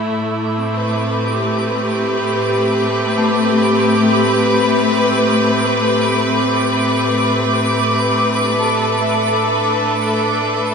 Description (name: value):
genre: ambient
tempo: free time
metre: none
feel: none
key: A minor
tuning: A4 = 440 Hz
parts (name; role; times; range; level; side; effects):
- clear studio string section; sustained chords; 0.0-10.7 s; A2 to B4; -15 LUFS; equal; none
- twinkling granular texture; texture; 0.3-10.7 s; D6; -23 LUFS; equal; built-in reverb
- vibraphone with medium mallets; arpeggios; 3.2-10.7 s; A3 to A5; -21 LUFS; left 2 dB; ping-pong delay
room: wet cathedral reverb, RT60 5.5 s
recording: none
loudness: -14 LUFS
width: side -5 dB against mid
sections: 0.0-10.7 A section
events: none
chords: 0.0 Am7